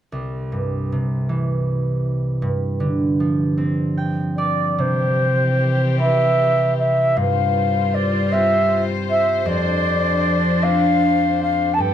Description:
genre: celtic folk, Celtic slow air.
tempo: 52 BPM (dotted quarters).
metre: 6/8.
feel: rubato.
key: C major.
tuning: A4 = 439 Hz.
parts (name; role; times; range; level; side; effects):
concert harp; accompaniment; 0.1-11.9 s; C2 to G5; -20 LUFS; right 1 dB; none.
baroque flute; melody; 4.4-11.9 s; C5 to A5; -19 LUFS; left 1 dB; none.
warm chamber string section; sustained chords; 4.8-11.9 s; E3 to C5; -24 LUFS; left 2 dB; none.
room: little or no reverb.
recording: dry, close 1970s-style studio recording.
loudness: -17 LUFS.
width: side -10 dB against mid.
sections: 0.1-4.8 A section; 4.8-11.9 B section.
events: harp fill 3.6-4.8.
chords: 0.1 C; 2.4 G7sus4; 4.8 Cmaj7; 7.2 G7sus4; 9.5 Dm7/F.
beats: | 0.13 1.29 | 2.43 3.58 | 4.78 5.98 | 7.16 8.32 | 9.46 10.63 | 11.79.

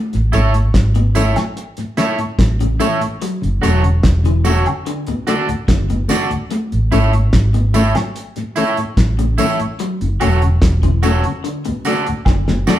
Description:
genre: roots reggae.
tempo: 73 BPM.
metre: 4/4.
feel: straight.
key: A major.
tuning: A4 = 441 Hz.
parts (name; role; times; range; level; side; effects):
electric guitar through a small old amp; arpeggios; 0.0-12.8 s; A2 to F#3; -24 LUFS; left 3 dB; none.
mellow tonewheel organ; accompaniment; 0.1-12.8 s; D2 to D4; -23 LUFS; left 2 dB; slow rotary speaker.
vintage muted fingered electric bass; bass; 0.1-12.7 s; E1 to A1; -16 LUFS; equal; none.
cloth-damped thuddy drum kit; drums; 0.1-12.8 s; hi-hat, kick drum, snare drum; -18 LUFS; equal; analog delay.
electric guitar at the edge of break-up; accompaniment; 0.3-12.8 s; E4 to D5; -20 LUFS; right 2 dB; none.
tambourine and woodblock; percussion; 0.3-12.8 s; none; -28 LUFS; right 2 dB; none.
room: wet stone room reverb, RT60 1.1 s.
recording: band playing live in one room.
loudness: -14 LUFS.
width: side -12 dB against mid.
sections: 0.0-12.8 A section.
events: drum fill 12.3-12.8.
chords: 0.0 A; 3.2 F#m; 4.9 D; 6.5 A; 9.8 F#m; 11.4 D.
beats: 0.74 1.56 2.39 | 3.21 4.04 4.86 5.68 | 6.51 7.33 8.15 8.97 | 9.80 10.62 11.44 12.27.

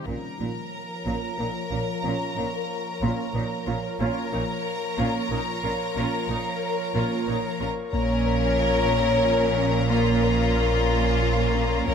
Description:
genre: cinematic, hybrid orchestral and electronic film score.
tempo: 61 BPM (dotted quarters).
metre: 6/8.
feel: straight.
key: Bb minor.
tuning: A4 = 440 Hz.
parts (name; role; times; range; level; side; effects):
clear symphonic viola section; accompaniment; 0.0-11.9 s; Bb3 to F4; -33 LUFS; right 2 dB; low-pass filter.
airy breathy pad; sustained chords; 0.0-11.9 s; F3 to Db5; -32 LUFS; equal; chorus, phaser, low-pass filter.
bright symphonic violin section; second line; 0.1-11.9 s; F4 to Bb5; -29 LUFS; left 2 dB; none.
harp-like synth pluck; arpeggios; 0.1-11.9 s; Bb3 to Bb4; -32 LUFS; left 1 dB; chorus, low-pass filter, ping-pong delay.
dark symphonic double bass section; bass; 0.1-11.9 s; Bb1; -30 LUFS; right 3 dB; none.
rich symphonic cello section; bass; 0.1-11.9 s; Bb2; -30 LUFS; right 4 dB; none.
clear symphonic violin section; melody; 7.9-11.9 s; Bb5; -34 LUFS; left 1 dB; low-pass filter.
clear trombone section; sustained chords; 7.9-11.9 s; F3 to Db4; -34 LUFS; right 7 dB; none.
dark French horn section; sustained chords; 7.9-11.9 s; Bb4 to Db5; -26 LUFS; left 6 dB; low-pass filter.
punchy sub bass; bass; 7.9-11.9 s; Bb1; -29 LUFS; equal; none.
room: light reverb.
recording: none.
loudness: -22 LUFS.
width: side -7 dB against mid.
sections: 0.1-7.9 A section; 7.9-11.9 B section.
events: filter sweep 0.1-7.9.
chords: 0.1 Bbm.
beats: | 0.06 1.05 | 2.03 3.02 | 4.00 4.98 | 5.97 6.95 | 7.93 8.92 | 9.90 10.88 | 11.87.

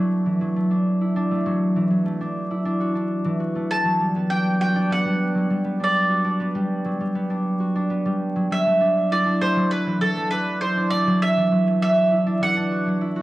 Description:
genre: folktronica.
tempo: 100 BPM.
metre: 4/4.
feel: straight.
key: unclear.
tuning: A4 = 440 Hz.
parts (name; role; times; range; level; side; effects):
concert harp; arpeggios; 0.0-13.2 s; E3 to F#4; -21 LUFS; equal; cassette tape.
mandolin; melody; 3.7-13.0 s; A4 to A5; -22 LUFS; right 1 dB; cassette tape.
room: moderate studio reverb, RT60 0.6 s.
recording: home recording on cassette, vinyl crackle.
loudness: -19 LUFS.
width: side -17 dB against mid.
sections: 0.0-13.2 A section.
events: none.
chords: 0.0 Dadd9; 3.7 Gmaj7; 8.5 Dadd9.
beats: 0.11 0.71 | 1.31 1.91 2.51 3.11 | 3.71 4.31 4.91 5.51 | 6.11 6.71 7.31 7.91 | 8.51 9.11 9.71 10.31 | 10.91 11.51 12.11 12.71.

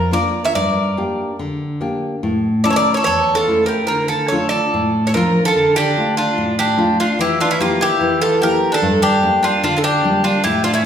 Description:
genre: greek folk, Greek bouzouki band.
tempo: 146 BPM.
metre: 4/4.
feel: straight.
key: D harmonic minor.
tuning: A4 = 440 Hz.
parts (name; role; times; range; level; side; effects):
Greek bouzouki; melody; 0.0-10.8 s; E4 to E5; -17 LUFS; right 1 dB; none.
bowl-back mandolin; second line; 0.0-10.8 s; Bb3 to C#5; -21 LUFS; right 1 dB; none.
nylon-string guitar; accompaniment; 0.0-10.9 s; E2 to G4; -19 LUFS; left 1 dB; none.
room: wet recital hall reverb, RT60 1.5 s.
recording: recorded in a church or concert hall.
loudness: -14 LUFS.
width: side -8 dB against mid.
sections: 0.0-5.5 A section; 5.5-10.9 B section.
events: speeding up 0.0-10.9.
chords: 0.0 Bb; 0.6 Gm; 2.2 A; 3.9 Dm; 7.2 Edim; 8.8 Gm.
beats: 0.13 | 0.55 0.97 1.39 1.81 | 2.23 2.65 3.06 3.48 | 3.90 4.31 4.72 5.14 | 5.55 5.96 6.37 6.78 | 7.19 7.60 8.01 8.41 | 8.82 9.23 9.63 10.03 | 10.44 10.84.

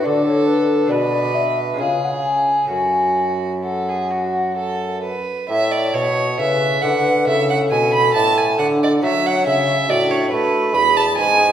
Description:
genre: classical, baroque-style sonata movement with continuo.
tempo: 64-70 BPM.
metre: 3/4.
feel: rubato.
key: F# minor, A major from 5.5 s.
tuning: A4 = 440 Hz.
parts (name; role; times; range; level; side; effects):
mellow baroque flute; melody; 0.0-11.5 s; F#4 to G#5; -20 LUFS; left 3 dB; none.
rich violin; second line; 0.0-11.5 s; F#4 to B5; -19 LUFS; right 3 dB; none.
lute; accompaniment; 0.0-11.5 s; E2 to F#4; -25 LUFS; left 1 dB; none.
clear bassoon; bass; 0.1-11.5 s; E2 to A3; -22 LUFS; right 1 dB; none.
room: wet recital hall reverb, RT60 1.7 s.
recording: heard from further back in the room.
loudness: -15 LUFS.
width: side -10 dB against mid.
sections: 0.0-5.5 A section; 5.5-11.5 A section.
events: none.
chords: 0.0 D; 0.9 G#m7b5/B; 1.8 C#; 2.7 F#m; 5.5 A; 8.1 F#m/A; 9.9 Bm7/A; 10.7 E.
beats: | 0.05 0.90 1.79 | 2.70 3.63 4.57 | 5.49 6.38 7.27 | 8.14 9.02 9.88 | 10.75.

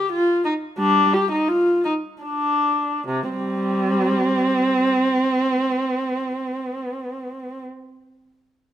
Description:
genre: classical, baroque-style suite movement for unaccompanied viola.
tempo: 68-92 BPM.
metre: 3/4.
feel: rubato.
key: C minor.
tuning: A4 = 438 Hz.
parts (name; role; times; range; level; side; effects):
warm viola; solo; 0.0-7.6 s; C3 to G4; -19 LUFS; equal; none.
room: moderate stone room reverb, RT60 1.3 s.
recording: close, detailed microphones.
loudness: -19 LUFS.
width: side -11 dB against mid.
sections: 0.0-3.1 A section; 3.1-7.9 B section.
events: slowing down 0.0-3.1.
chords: none.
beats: 0.10 | 0.77 1.47 2.22 | 3.06 3.88 4.69 | 5.50 6.31 7.11.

